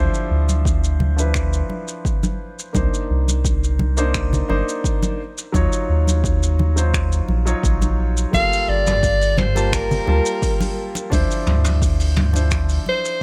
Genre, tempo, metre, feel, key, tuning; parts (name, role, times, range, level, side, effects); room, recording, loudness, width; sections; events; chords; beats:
sunset chillout; 86 BPM; 4/4; straight; A4 = 439 Hz
warm concert grand piano; accompaniment; 0.0-13.2 s; F3 to A5; -28 LUFS; equal; delay
round analog bass; bass; 0.0-12.8 s; G1 to Eb2; -21 LUFS; equal
vintage brush drum kit; drums; 0.1-13.2 s; finger snaps, hi-hat, shaker, toms; -29 LUFS; equal
congas; percussion; 0.5-13.0 s; -28 LUFS; equal
electronic kick drum; drums; 0.7-12.7 s; -25 LUFS; equal
warm soprano saxophone; melody; 8.3-13.2 s; Bb4 to F5; -23 LUFS; equal; delay
little or no reverb; -19 LUFS; mono
0.0-13.2 A section
0.0 Dm9; 2.7 Cm9; 5.2 Ebm9; 8.3 Gm9; 11.1 Dm9
0.66 1.35 2.05 | 2.75 3.45 4.14 4.84 | 5.54 6.24 6.93 7.63 | 8.33 9.03 9.73 10.42 | 11.12 11.82 12.52 13.21